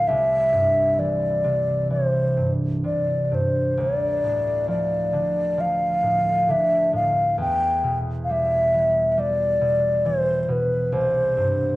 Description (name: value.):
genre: celtic folk, Celtic slow air.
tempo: 66 BPM.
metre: 4/4.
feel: uneven beats, rubato.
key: unclear.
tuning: A4 = 440 Hz.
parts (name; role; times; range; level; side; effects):
mellow hollow wooden flute; melody; 0.0-11.8 s; B4 to G5; -20 LUFS; equal; none.
concert harp; accompaniment; 0.0-11.8 s; C2 to G3; -25 LUFS; right 1 dB; none.
room: moderate recital hall reverb, RT60 1.4 s.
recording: worn, warbling old tape, cassette tape, warbly pitch drift.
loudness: -19 LUFS.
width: side -18 dB against mid.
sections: 0.0-11.8 A section.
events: none.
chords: 0.1 C; 3.8 Dm; 7.4 Em; 10.9 C5.